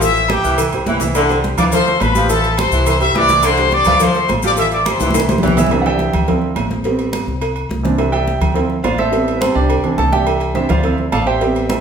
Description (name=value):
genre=latin, salsa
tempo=211 BPM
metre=4/4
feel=straight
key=C major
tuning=A4 = 440 Hz
part: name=bright trumpet section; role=melody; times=0.0-5.4 s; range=G4 to E6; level=-16 LUFS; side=left 2 dB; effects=none
part: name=clear saxophone section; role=second line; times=0.0-5.6 s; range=D3 to F3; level=-21 LUFS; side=left 1 dB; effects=none
part: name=clear concert grand piano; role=accompaniment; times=0.0-11.8 s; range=E3 to A5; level=-18 LUFS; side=right 3 dB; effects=none
part: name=upright bass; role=bass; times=0.0-11.8 s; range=A1 to D2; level=-21 LUFS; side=left 1 dB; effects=none
part: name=agogo bells and timbales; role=percussion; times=0.0-11.8 s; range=none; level=-25 LUFS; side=right 4 dB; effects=none
part: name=congas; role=percussion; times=0.0-11.8 s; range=none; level=-22 LUFS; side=equal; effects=none
part: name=cowbell and bongos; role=percussion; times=0.0-11.8 s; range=none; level=-24 LUFS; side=left 1 dB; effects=none
part: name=maracas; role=percussion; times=0.0-5.7 s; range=none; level=-29 LUFS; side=left 5 dB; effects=none
room=wet large studio reverb, RT60 1.2 s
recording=band playing live in one room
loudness=-13 LUFS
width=side -7 dB against mid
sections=0.0-5.7 A section; 5.7-11.8 B section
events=drum fill 5.0-5.7; grand piano solo 5.7-11.8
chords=0.0 Am7; 0.6 Cadd9; 1.7 Dm7; 2.3 Am7; 2.9 Cadd9; 4.0 Dm7; 4.6 Am7; 5.1 C; 5.7 Cadd9; 6.3 Dm7; 6.8 Am7; 7.4 Cadd9; 8.6 Dm7; 9.1 Am7; 9.7 Cadd9; 10.8 Dm7